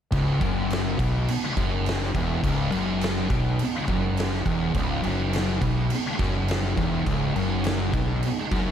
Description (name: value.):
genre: stoner and doom metal.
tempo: 104 BPM.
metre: 4/4.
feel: straight.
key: C# minor.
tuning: A4 = 440 Hz.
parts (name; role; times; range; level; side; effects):
string machine, violas; sustained chords; 0.1-8.7 s; C#3 to D#4; -38 LUFS; left 1 dB; none.
sludgy distorted guitar; riff; 0.1-8.7 s; C#2 to B2; -33 LUFS; left 1 dB; overdrive.
thick fuzz guitar; riff; 0.1-8.7 s; C#2 to B2; -28 LUFS; left 7 dB; distortion.
thick fuzz guitar; riff; 0.1-8.7 s; C#2 to B2; -28 LUFS; right 7 dB; distortion.
fuzz fingered electric bass; bass; 0.1-8.7 s; C#1 to B1; -29 LUFS; equal; overdrive.
oversized low-tuned drum kit; drums; 0.1-8.7 s; crash cymbal, kick drum, snare drum; -28 LUFS; equal; none.
room: light reverb.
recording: none.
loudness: -22 LUFS.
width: side -9 dB against mid.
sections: 0.1-8.7 A section.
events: none.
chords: 0.1 C#m.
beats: | 0.12 0.69 1.27 1.85 | 2.43 3.00 3.58 4.16 | 4.74 5.32 5.90 6.48 | 7.06 7.64 8.22.